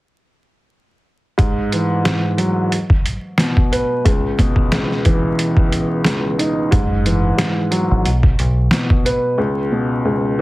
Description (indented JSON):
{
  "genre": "hip hop, boom-bap hip-hop",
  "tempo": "90 BPM",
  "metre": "4/4",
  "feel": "swing 56% on 16ths",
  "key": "C# minor",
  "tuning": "A4 = 440 Hz",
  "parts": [
    { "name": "dark upright piano", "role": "accompaniment", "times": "1.4-10.4 s", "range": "C#2 to B4", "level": "-18 LUFS", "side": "equal", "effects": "cassette tape, high-pass filter, low-pass filter, plate reverb" },
    { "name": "trip hop sampler-style drum kit", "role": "drums", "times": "1.4-9.2 s", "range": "hi-hat, kick drum, snare drum", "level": "-16 LUFS", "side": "equal", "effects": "none" },
    { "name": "deep dub fingered electric bass", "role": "bass", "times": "6.7-8.7 s", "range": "F#1 to B1", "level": "-16 LUFS", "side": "equal", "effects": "none" }
  ],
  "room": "light reverb",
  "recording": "heavily compressed radio sound, multiband compression, vinyl crackle",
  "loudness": "-14 LUFS",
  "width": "side -19 dB against mid",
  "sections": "1.4-10.4 A section",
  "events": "break 9.4-10.4",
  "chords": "1.4 F#sus2; 2.7 N.C.; 4.1 C#m9; 6.7 F#sus2; 8.1 N.C.; 9.4 C#7(no3)",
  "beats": "| 1.39 2.05 2.72 3.39 | 4.05 4.72 5.39 6.05 | 6.72 7.39 8.05 8.72 | 9.39 10.05"
}